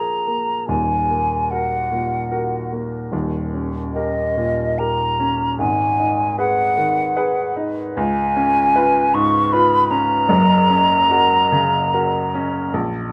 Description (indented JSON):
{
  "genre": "classical, romantic duo for flute and grand piano",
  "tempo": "69-78 BPM",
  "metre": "3/4",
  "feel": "rubato",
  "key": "F# major",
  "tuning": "A4 = 440 Hz",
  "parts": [
    { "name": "mellow hollow silver concert flute", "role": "melody", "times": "0.0-12.7 s", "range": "D#5 to C#6", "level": "-20 LUFS", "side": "equal", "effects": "none" },
    { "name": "clear grand piano", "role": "accompaniment", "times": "0.0-13.1 s", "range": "D#1 to B4", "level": "-23 LUFS", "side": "equal", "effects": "none" }
  ],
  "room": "light reverb",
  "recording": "none",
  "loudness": "-18 LUFS",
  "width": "mono",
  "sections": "0.0-13.1 A section",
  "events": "none",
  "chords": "0.0 A#7(no3); 0.7 D#m; 3.1 D#7; 5.6 G#m7; 8.0 C#7; 10.3 F#"
}